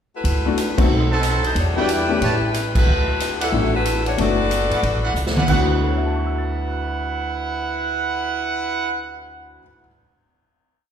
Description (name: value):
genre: jazz, big band swing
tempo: 183 BPM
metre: 4/4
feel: swing 64% on 8ths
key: D major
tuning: A4 = 440 Hz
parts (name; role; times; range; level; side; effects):
- bright saxophone section; melody; 0.1-5.2 s; F#3 to D5; -23 LUFS; left 2 dB; none
- upright bass; bass; 0.2-9.6 s; F#1 to A2; -24 LUFS; right 1 dB; none
- swinging big-band drum kit; drums; 0.2-5.6 s; crash cymbal, hi-hat, kick drum, ride cymbal, snare drum, toms; -23 LUFS; right 1 dB; none
- clear baby grand piano; accompaniment; 0.5-9.9 s; D2 to A6; -24 LUFS; left 5 dB; none
- bright trumpet section; stabs; 1.1-8.9 s; D#4 to A5; -24 LUFS; right 4 dB; none
room: wet recital hall reverb, RT60 1.6 s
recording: recorded in a church or concert hall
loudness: -18 LUFS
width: side -8 dB against mid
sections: 0.0-0.2 pickup bar; 0.2-5.5 A section; 5.5-8.1 final chord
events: band accent 0.7, 2.7; drum fill 5.2-5.5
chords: 0.2 D69; 0.9 B7b9; 1.6 Em7; 2.2 A9; 2.9 D69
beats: | 0.24 0.57 0.90 1.23 | 1.55 1.88 2.21 2.54 | 2.86 3.19 3.52 3.85 | 4.17 4.50 4.83 5.15 | 5.48 5.81 6.14 6.46 | 6.79 7.12 7.45 7.78